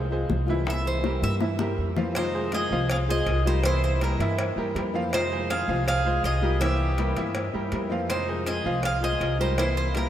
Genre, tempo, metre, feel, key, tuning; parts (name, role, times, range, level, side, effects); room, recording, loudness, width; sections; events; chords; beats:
latin, Cuban son and guajira; 162 BPM; 4/4; straight; F minor; A4 = 440 Hz
bright grand piano; arpeggios; 0.0-10.1 s; E3 to F5; -30 LUFS; right 3 dB
upright bass; bass; 0.0-10.1 s; C2 to G2; -27 LUFS; equal
flamenco guitar; accompaniment; 0.1-10.1 s; C3 to F4; -32 LUFS; left 5 dB
bongos and cowbell; percussion; 0.3-10.1 s; -33 LUFS; left 3 dB
Cuban tres; melody; 0.7-10.1 s; Bb4 to F5; -30 LUFS; right 2 dB
clear trumpet; second line; 2.2-10.1 s; Eb4 to Ab4; -35 LUFS; left 3 dB
wet cathedral reverb, RT60 6.1 s; in a vast, echoing space; -23 LUFS; side -11 dB against mid
0.0-2.2 A section; 2.2-10.1 B section
Cuban tres solo 0.0-2.2; drum fill 1.4-2.2
0.0 Fm7; 0.7 C7; 2.2 Fm7; 3.6 C7; 5.1 Fm7; 6.6 C7; 8.1 Fm7; 9.6 C7
0.30 | 0.67 1.04 1.42 1.79 | 2.16 2.53 2.90 3.27 | 3.64 4.01 4.38 4.75 | 5.12 5.50 5.87 6.24 | 6.61 6.98 7.35 7.72 | 8.09 8.46 8.84 9.21 | 9.58 9.95